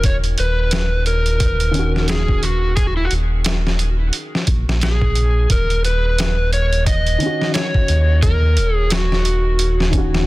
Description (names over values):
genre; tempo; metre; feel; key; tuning
trip hop; 88 BPM; 4/4; swing 59% on 16ths; Eb minor; A4 = 440 Hz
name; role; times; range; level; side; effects
overdriven slide guitar; melody; 0.0-9.9 s; Fb4 to Eb5; -22 LUFS; equal; tape echo
felt-muted upright piano; accompaniment; 0.0-10.3 s; Eb3 to Gb4; -26 LUFS; left 1 dB; tremolo, vintage 12-bit sampler grit
round analog bass; bass; 0.0-10.3 s; Eb1 to Eb2; -17 LUFS; equal; tube saturation
trip hop sampler-style drum kit; drums; 0.0-10.3 s; hi-hat, kick drum, snare drum; -20 LUFS; equal; none
room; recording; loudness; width
little or no reverb; dense, heavily limited modern master; -15 LUFS; side -19 dB against mid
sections
0.0-10.3 A section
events
none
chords
0.0 Ebm7